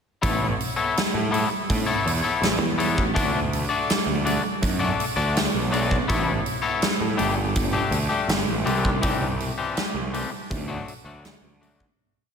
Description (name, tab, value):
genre	quiet-loud alternative rock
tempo	82 BPM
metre	4/4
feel	straight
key	unclear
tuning	A4 = 436 Hz
part	twangy electric guitar	arpeggios	0.2-11.8 s	E3 to D5	-25 LUFS	left 4 dB	analog delay
part	fuzz picked electric bass	bass	0.2-11.9 s	G1 to A2	-27 LUFS	right 1 dB	overdrive
part	big rock drum kit	drums	0.2-12.0 s	hi-hat, kick drum, snare drum	-25 LUFS	right 1 dB	none
room	moderate lush hall reverb, RT60 2.8 s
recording	big arena sound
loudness	-21 LUFS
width	side -6 dB against mid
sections	0.2-12.0 verse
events	fade-out 9.0-12.0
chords	0.2 Aadd9; 3.2 D; 6.1 Aadd9; 7.2 Gsus2; 8.7 Cadd9; 10.5 D